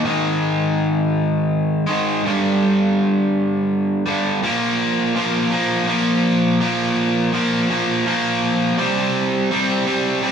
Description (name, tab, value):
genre	rock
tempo	82 BPM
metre	3/4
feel	straight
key	unclear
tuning	A4 = 441 Hz
part	cranked stack guitar	solo	0.0-10.3 s	G2 to C4	-16 LUFS	equal	overdrive
room	wet large studio reverb, RT60 1.0 s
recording	band playing live in one room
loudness	-16 LUFS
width	side -7 dB against mid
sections	0.0-4.4 A section; 4.4-10.3 B section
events	build-up 4.4-10.3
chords	0.0 Ab5; 2.2 G5; 4.4 Bb5; 8.8 C5